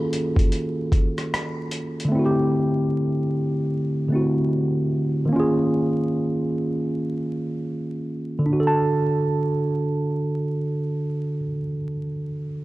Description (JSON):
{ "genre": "lo-fi hip hop", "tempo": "75 BPM", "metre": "4/4", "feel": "swing 64% on 16ths", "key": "unclear", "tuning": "A4 = 440 Hz", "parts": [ { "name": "tine electric piano", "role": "accompaniment", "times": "0.0-12.6 s", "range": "D3 to A5", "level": "-22 LUFS", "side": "equal", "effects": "low-pass filter" }, { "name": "dusty soul sampler-style drum kit", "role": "drums", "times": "0.1-2.1 s", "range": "hi-hat, kick drum, rim click", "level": "-22 LUFS", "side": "equal", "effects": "none" } ], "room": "moderate plate reverb, RT60 2.9 s", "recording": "vinyl crackle", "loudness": "-21 LUFS", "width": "side -18 dB against mid", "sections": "0.0-8.5 A section; 8.5-11.7 B section", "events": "none", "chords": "0.0 Eb9sus4; 2.1 D9sus4; 5.3 Eb9sus4; 8.5 D", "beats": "0.52 1.31 | 2.12 2.92 3.71 4.51 | 5.32 6.12 6.92 7.71 | 8.52 9.31 10.12 10.91" }